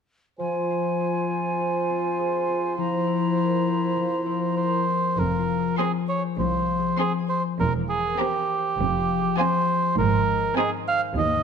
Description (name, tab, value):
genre	cinematic, playful, whimsical film cue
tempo	101 BPM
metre	4/4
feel	straight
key	F minor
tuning	A4 = 440 Hz
part	clear clarinet	second line	0.4-4.8 s	E4 to F4	-31 LUFS	equal	none
part	mellow cor anglais	second line	0.4-11.4 s	G4 to F5	-26 LUFS	right 3 dB	none
part	silver concert flute	second line	0.4-4.8 s	Ab5 to Bb5	-31 LUFS	right 1 dB	none
part	mellow bassoon	accompaniment	0.4-4.8 s	F3	-29 LUFS	right 4 dB	none
part	concert harp	arpeggios	0.4-11.4 s	Ab2 to Bb5	-27 LUFS	left 9 dB	none
part	rich studio cello section	bass	5.2-11.4 s	C2 to Ab2	-28 LUFS	right 5 dB	none
part	rich studio double bass section	bass	5.2-11.4 s	E1 to Eb2	-30 LUFS	right 4 dB	none
part	rich studio violin section	melody	5.8-11.0 s	Ab5 to C6	-33 LUFS	left 2 dB	none
part	rich studio violin section	second line	5.8-11.0 s	Eb4 to Ab4	-34 LUFS	equal	none
part	rich studio viola section	accompaniment	5.8-11.0 s	C4	-32 LUFS	right 2 dB	none
room	moderate scoring stage reverb, RT60 1.6 s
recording	none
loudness	-22 LUFS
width	side -6 dB against mid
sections	0.4-5.2 A section; 5.2-11.4 B section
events	none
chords	0.4 Fm; 2.8 C7/F; 5.2 Fm; 7.6 C7/E; 8.8 Fm; 10.0 Ab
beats	| 0.40 1.01 1.60 2.19 | 2.78 3.37 3.97 4.58 | 5.19 5.80 6.40 7.00 | 7.60 8.19 8.79 9.38 | 9.98 10.57 11.16